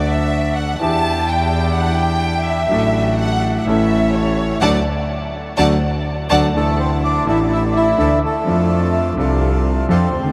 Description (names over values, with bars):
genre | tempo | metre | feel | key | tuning
tango | 126 BPM | 4/4 | rubato | D major, D minor from 6.5 s | A4 = 441 Hz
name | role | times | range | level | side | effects
warm studio violin section | second line | 0.0-10.3 s | A3 to A5 | -24 LUFS | equal | none
clear concert grand piano | accompaniment | 0.0-10.3 s | A1 to A4 | -22 LUFS | equal | none
bandoneon | stabs | 0.0-10.1 s | C#4 to A4 | -28 LUFS | equal | none
rich double bass | bass | 0.0-10.3 s | A1 to F2 | -22 LUFS | equal | none
bandoneon | melody | 6.6-10.3 s | A3 to E5 | -23 LUFS | equal | none
room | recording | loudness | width
wet huge ambient reverb, RT60 8.8 s | in a vast, echoing space | -17 LUFS | mono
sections
0.0-6.5 A section; 6.5-10.3 B section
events
violin section solo 0.0-6.5; band accent 4.6-6.5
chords
0.0 D; 0.8 Em7; 2.7 D/A; 3.7 A; 4.6 D; 6.5 Dsus2; 8.5 F6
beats
0.34 | 0.81 1.29 1.76 2.24 | 2.72 3.19 3.67 4.15 | 4.62 5.10 5.58 6.06 | 6.55 7.03 7.50 7.98 | 8.46 8.94 9.41 9.89